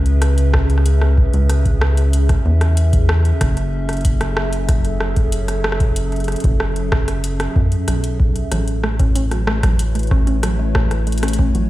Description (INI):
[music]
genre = IDM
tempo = 94 BPM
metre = 4/4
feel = straight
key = unclear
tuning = A4 = 436 Hz
[part]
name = warbly tape-like pad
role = sustained chords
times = 0.0-11.7 s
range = C#3 to E5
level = -25 LUFS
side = equal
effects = chorus, built-in reverb, phaser
[part]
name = rubbery square bass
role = bass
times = 0.0-11.7 s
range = F#1 to F#2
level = -17 LUFS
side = equal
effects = none
[part]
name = electro analog drum machine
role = drums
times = 0.1-11.7 s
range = hi-hat, rim click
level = -25 LUFS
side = equal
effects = none
[part]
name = electronic kick drum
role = drums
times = 0.5-11.5 s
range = none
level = -17 LUFS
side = equal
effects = none
[part]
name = warbly dusty pluck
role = arpeggios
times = 8.5-11.7 s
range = F#3 to C#4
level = -24 LUFS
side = right 1 dB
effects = chorus, digital delay
[sound]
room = little or no reverb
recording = played on a big sound system in a bare room, stone room reverb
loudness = -15 LUFS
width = side -16 dB against mid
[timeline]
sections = 0.0-11.7 A section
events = none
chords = 0.0 C#m7; 3.4 F#m9; 8.5 A69